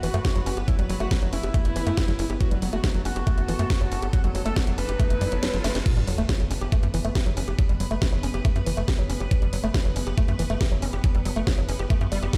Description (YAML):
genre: psychedelic trance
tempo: 139 BPM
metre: 4/4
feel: straight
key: F# phrygian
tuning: A4 = 439 Hz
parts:
  - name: overdriven synth lead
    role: melody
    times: 0.0-5.8 s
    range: F#3 to B4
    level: -34 LUFS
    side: equal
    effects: distortion, phaser, sidechain pumping, delay
  - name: evolving wavetable pad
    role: sustained chords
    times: 0.0-12.4 s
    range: B3 to B4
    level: -39 LUFS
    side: equal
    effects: ensemble chorus, built-in reverb, phaser, sidechain pumping
  - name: woody wave-folded pluck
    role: riff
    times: 0.0-12.4 s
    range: E3 to G4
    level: -34 LUFS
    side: equal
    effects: chorus, sidechain pumping, tape echo
  - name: tight sequencer bass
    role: bass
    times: 0.0-12.3 s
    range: F#1 to F#2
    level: -29 LUFS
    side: equal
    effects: tube saturation
  - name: drum and bass drum kit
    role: drums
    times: 0.0-12.4 s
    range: crash cymbal, hi-hat, snare drum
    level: -35 LUFS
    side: equal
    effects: none
  - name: electronic kick drum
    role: drums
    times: 0.2-12.4 s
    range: none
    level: -25 LUFS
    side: equal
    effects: none
  - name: riser and sub drop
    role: sound effects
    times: 3.9-7.6 s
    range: none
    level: -38 LUFS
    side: equal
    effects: none
room: little or no reverb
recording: played on a big sound system in a bare room, stone room reverb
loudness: -24 LUFS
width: mono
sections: 0.0-5.9 A section; 5.9-12.4 B section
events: riser 3.9-5.9; kick drops out 5.4-5.9; drum fill 5.5-5.9; drop 5.9-12.4; impact 5.9-7.6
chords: 0.0 F#5